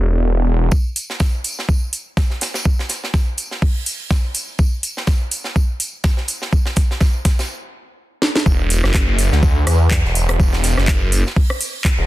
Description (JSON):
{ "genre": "bass house", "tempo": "124 BPM", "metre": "4/4", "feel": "swing 57% on 16ths", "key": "unclear", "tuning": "A4 = 440 Hz", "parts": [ { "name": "phased detuned saw bass", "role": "bass", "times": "0.0-0.7, 8.5-12.1 s", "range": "E1 to E2", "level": "-15 LUFS", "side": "equal", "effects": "phaser, tube saturation, sidechain pumping" }, { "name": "electronic kick drum", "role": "drums", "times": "0.7-12.0 s", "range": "none", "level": "-16 LUFS", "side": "equal", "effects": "overdrive" }, { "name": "tight metal drum kit", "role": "drums", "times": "0.7-12.0 s", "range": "hi-hat, snare drum, tambourine", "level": "-27 LUFS", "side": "right 1 dB", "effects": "sidechain pumping on hats, high-pass filter on hats, high-pass filter on snare, sidechain pumping on perc, high-pass filter on perc, high-pass filter on room" }, { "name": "house drum kit", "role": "drums", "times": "1.0-12.0 s", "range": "handclaps, hi-hat, rim click, snare drum", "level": "-21 LUFS", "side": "equal", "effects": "overdrive, low-pass filter on hats, low-pass filter on snare, low-pass filter on room" } ], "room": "little or no reverb", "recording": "dense, heavily limited modern master", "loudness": "-16 LUFS", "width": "side -16 dB against mid", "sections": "0.7-8.5 A section; 8.5-12.1 B section", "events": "build-up 0.7-8.5; drum fill 4.6-7.5, 8.2; stop 7.5-8.5; drop 8.5-12.1", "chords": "none" }